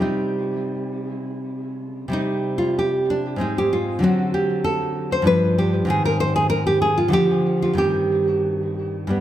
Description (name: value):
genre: classical, baroque-style dance for nylon-string guitar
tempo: 82-98 BPM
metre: 3/4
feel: rubato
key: C minor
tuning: A4 = 440 Hz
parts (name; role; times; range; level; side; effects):
- nylon-string guitar; solo; 0.0-9.2 s; G2 to C5; -19 LUFS; equal; tape echo
room: moderate recital hall reverb, RT60 1.4 s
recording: none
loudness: -19 LUFS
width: side -12 dB against mid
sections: 0.0-2.1 A section; 2.1-9.2 B section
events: none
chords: 0.0 C5; 4.0 D7; 5.3 G7; 5.9 Ab; 7.1 Dm7; 7.8 Cm/G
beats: | 0.02 0.75 1.45 | 2.14 2.79 3.42 | 4.04 4.66 5.27 | 5.89 6.50 7.14 | 7.79 8.45 9.13